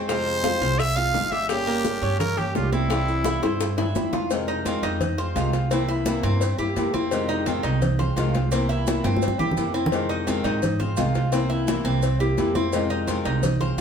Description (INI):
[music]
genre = latin, Cuban son and guajira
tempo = 171 BPM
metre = 4/4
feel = straight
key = F minor from 4.3 s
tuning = A4 = 441 Hz
[part]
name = flamenco guitar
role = accompaniment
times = 0.0-13.8 s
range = C3 to G4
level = -27 LUFS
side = left 4 dB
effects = none
[part]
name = Cuban tres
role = arpeggios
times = 0.0-13.8 s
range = Bb3 to C5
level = -28 LUFS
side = right 4 dB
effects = tape echo
[part]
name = upright bass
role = bass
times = 0.0-13.8 s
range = G1 to Ab2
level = -26 LUFS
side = right 1 dB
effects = none
[part]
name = growling trumpet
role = melody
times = 0.1-3.9 s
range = E4 to F5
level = -25 LUFS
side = equal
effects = none
[part]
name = bongos and cowbell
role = percussion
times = 0.1-13.8 s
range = none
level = -31 LUFS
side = left 5 dB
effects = none
[part]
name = congas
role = percussion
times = 0.1-13.8 s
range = none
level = -30 LUFS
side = equal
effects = none
[part]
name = maracas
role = percussion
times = 0.1-13.8 s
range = none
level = -40 LUFS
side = right 4 dB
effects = none
[sound]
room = wet studio reverb, RT60 0.8 s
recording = heard from further back in the room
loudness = -21 LUFS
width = side -7 dB against mid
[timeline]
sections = 0.0-4.3 A section; 4.3-13.8 B section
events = drum fill 3.4-4.3, 9.0-9.9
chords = 0.1 Fm; 1.5 Gdim; 2.9 C; 4.3 Fm7; 5.7 C7; 7.1 Fm7; 8.5 C7; 9.9 Fm7; 11.3 C7; 12.7 Fm7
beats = | 0.09 0.45 0.80 1.15 | 1.50 1.85 2.20 2.55 | 2.90 3.25 3.60 3.96 | 4.31 4.66 5.01 5.36 | 5.71 6.06 6.41 6.76 | 7.12 7.47 7.82 8.17 | 8.52 8.87 9.22 9.57 | 9.92 10.28 10.63 10.98 | 11.33 11.68 12.03 12.38 | 12.73 13.08 13.43 13.78